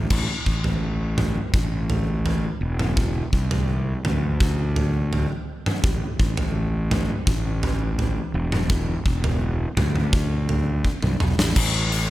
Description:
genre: quiet-loud alternative rock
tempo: 84 BPM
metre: 4/4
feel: straight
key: unclear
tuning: A4 = 439 Hz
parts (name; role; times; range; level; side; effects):
- fuzz fingered electric bass; bass; 0.0-12.1 s; E1 to D2; -23 LUFS; equal; overdrive
- big rock drum kit; drums; 0.1-12.1 s; crash cymbal, hi-hat, kick drum, snare drum, toms; -23 LUFS; equal; none
room: little or no reverb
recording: none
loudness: -20 LUFS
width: side -16 dB against mid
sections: 0.1-11.6 A section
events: drum fill 10.8-11.6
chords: none

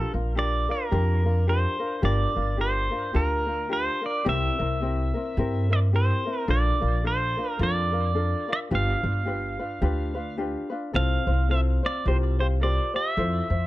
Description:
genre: Hawaiian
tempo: 108 BPM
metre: 4/4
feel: swing 59% on 8ths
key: unclear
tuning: A4 = 441 Hz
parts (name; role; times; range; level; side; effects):
- pedal steel guitar; melody; 0.0-13.7 s; Bb4 to F5; -28 LUFS; right 2 dB; tape echo
- ukulele; accompaniment; 0.0-13.7 s; C4 to C5; -30 LUFS; left 2 dB; none
- upright bass; bass; 0.0-13.7 s; G1 to G2; -24 LUFS; equal; none
room: light reverb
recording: dark, warm production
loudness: -23 LUFS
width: side -16 dB against mid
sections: 0.0-13.7 A section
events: none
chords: 0.0 Bb6; 2.0 Gm7; 4.3 C7; 6.5 Bbmaj7; 8.7 G7; 10.9 F/C; 12.1 C7sus4; 13.2 Fmaj7

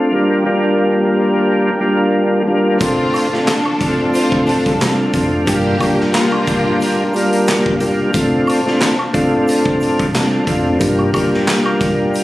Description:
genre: hip hop, boom-bap hip-hop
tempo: 90 BPM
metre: 4/4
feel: swing 55% on 16ths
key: unclear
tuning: A4 = 442 Hz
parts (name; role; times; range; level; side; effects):
- tonewheel organ; accompaniment; 0.0-12.2 s; G3 to F4; -14 LUFS; equal; chorus vibrato, slow rotary speaker, cassette tape
- warm analog pad; sustained chords; 0.0-12.2 s; D4 to A5; -23 LUFS; equal; chorus
- warm symphonic string section; stabs; 2.8-7.1 s; D3 to C5; -21 LUFS; equal; tape echo
- tine electric piano; bass; 2.8-11.1 s; C2 to G2; -22 LUFS; equal; medium stereo tremolo
- raw garage drum kit; drums; 2.8-12.2 s; handclaps, hi-hat, kick drum, snare drum; -20 LUFS; equal; none
- egg shaker and woodblock; percussion; 2.8-12.2 s; none; -26 LUFS; right 1 dB; none
room: light reverb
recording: recorded on a phone in the room, studio reverb, compression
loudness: -13 LUFS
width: side -16 dB against mid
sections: 0.0-12.2 A section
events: none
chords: 0.1 Gm7; 2.8 Dm7; 5.5 Gm7; 8.1 Dm7; 10.8 Gm7

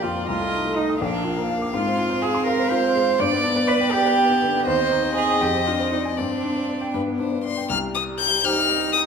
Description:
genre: quick classical-period movement for piano quartet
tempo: 81 BPM (dotted quarters)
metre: 6/8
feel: straight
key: C minor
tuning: A4 = 440 Hz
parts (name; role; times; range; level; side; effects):
- warm violin; melody; 0.0-9.0 s; B4 to G6; -25 LUFS; left 8 dB; none
- rich cello; second line; 0.0-9.1 s; D4 to D5; -22 LUFS; right 4 dB; none
- dark viola; accompaniment; 0.0-9.1 s; F3 to C4; -28 LUFS; right 2 dB; none
- warm baby grand piano; accompaniment; 0.0-9.1 s; Bb1 to Eb6; -25 LUFS; left 3 dB; none
room: wet recital hall reverb, RT60 1.7 s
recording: minimal, uncompressed stereo recording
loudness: -19 LUFS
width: side -6 dB against mid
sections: 0.0-7.7 A section; 7.7-9.1 B section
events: none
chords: 0.3 Adim/C; 1.0 Bb; 1.7 Fm/Ab; 3.2 G; 4.7 Cm/Eb; 5.4 Dm7b5/F; 6.2 Gsus4; 6.9 G; 7.7 Cm

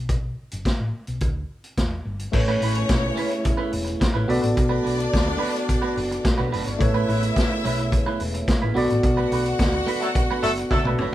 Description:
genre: disco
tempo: 108 BPM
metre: 4/4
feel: straight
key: unclear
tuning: A4 = 441 Hz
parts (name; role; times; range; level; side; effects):
- hollow-body short-scale fingered electric bass; bass; 0.0-11.1 s; E1 to E2; -27 LUFS; left 1 dB; none
- vintage drum kit; drums; 0.1-11.1 s; crash cymbal, hi-hat, kick drum, snare drum, toms; -24 LUFS; equal; none
- clear studio string section; second line; 2.3-11.1 s; F#3 to F#5; -30 LUFS; left 2 dB; none
- clean electric guitar; accompaniment; 2.3-11.1 s; A3 to B4; -30 LUFS; right 5 dB; none
- tine electric piano; accompaniment; 2.3-11.1 s; A3 to D5; -26 LUFS; equal; medium stereo tremolo
- mellow French horn section; sustained chords; 2.3-11.1 s; C#3 to F#4; -32 LUFS; right 1 dB; none
- mellow horn section; stabs; 10.0-11.1 s; F#3 to A4; -24 LUFS; equal; none
room: light reverb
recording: band playing live in one room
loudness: -20 LUFS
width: side -14 dB against mid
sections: 0.0-2.3 A section; 2.3-11.1 B section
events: band accent 9.0-11.1; drum fill 10.7-11.1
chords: 0.0 Bm; 2.3 Aadd9; 4.3 Bm7; 6.8 Aadd9; 8.8 Bm7

